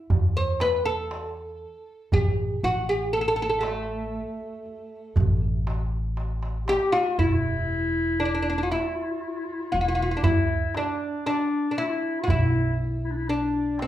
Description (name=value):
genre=Arabic maqam ensemble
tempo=118 BPM (eighths)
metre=10/8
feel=straight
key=A maqam rast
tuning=A4 = 440 Hz
part: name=upright bass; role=bass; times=0.1-13.8 s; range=E1 to E2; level=-28 LUFS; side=equal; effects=none
part: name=darbuka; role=percussion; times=0.1-13.9 s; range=none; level=-26 LUFS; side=right 1 dB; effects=none
part: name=oud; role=melody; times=0.4-13.9 s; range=A3 to C5+50c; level=-26 LUFS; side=equal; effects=none
part: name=clear clarinet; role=second line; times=6.7-13.9 s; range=C4 to G4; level=-29 LUFS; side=left 4 dB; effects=none
room=wet large studio reverb, RT60 0.8 s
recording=band playing live in one room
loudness=-23 LUFS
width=side -12 dB against mid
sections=0.0-7.2 A section; 7.2-13.9 B section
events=drum fill 6.2-7.2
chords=none